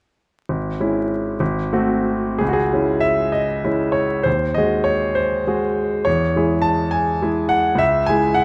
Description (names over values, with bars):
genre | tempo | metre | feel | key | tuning
classical, romantic character piece for solo piano | 56-71 BPM (dotted quarters) | 6/8 | rubato | C# minor | A4 = 440 Hz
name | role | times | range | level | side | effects
bright concert grand piano | solo | 0.5-8.4 s | G#1 to A5 | -19 LUFS | equal | none
room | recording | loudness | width
light reverb | close, detailed microphones, vinyl crackle | -19 LUFS | mono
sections
0.5-2.4 A section; 2.4-8.4 B section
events
none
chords
0.5 C#m/G#; 1.4 G#7b9; 2.4 C#m; 4.3 G#7/D#; 6.1 C#m/E; 7.8 C#m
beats
| 0.48 1.40 | 2.41 3.34 | 4.26 5.17 | 6.06 6.93 | 7.81